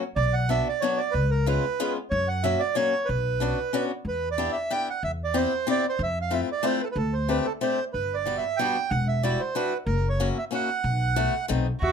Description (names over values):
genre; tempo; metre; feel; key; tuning
musette waltz; 186 BPM; 3/4; swing 53% on 8ths; B minor, E minor from 4.1 s; A4 = 440 Hz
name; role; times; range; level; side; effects
picked swing-style acoustic guitar; accompaniment; 0.0-11.7 s; F#3 to G4; -28 LUFS; left 6 dB; none
accordion; melody; 0.2-11.9 s; A4 to G5; -26 LUFS; right 5 dB; none
upright bass; bass; 0.2-11.9 s; E1 to F#2; -27 LUFS; left 1 dB; none
warm violin; second line; 11.8-11.9 s; F#4; -25 LUFS; right 4 dB; none
room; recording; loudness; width
moderate small room reverb, RT60 0.5 s; none; -23 LUFS; side -6 dB against mid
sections
0.0-4.1 A section; 4.1-11.9 B section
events
none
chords
0.2 Bm; 1.1 C#7; 2.1 F#; 3.1 Bmadd9; 4.1 Em7; 5.0 Cmaj7/E; 6.0 Fmaj7; 7.0 D7sus4; 7.9 Gmaj7; 8.9 Em9; 9.9 F#7; 10.8 B7sus4; 11.5 B7b9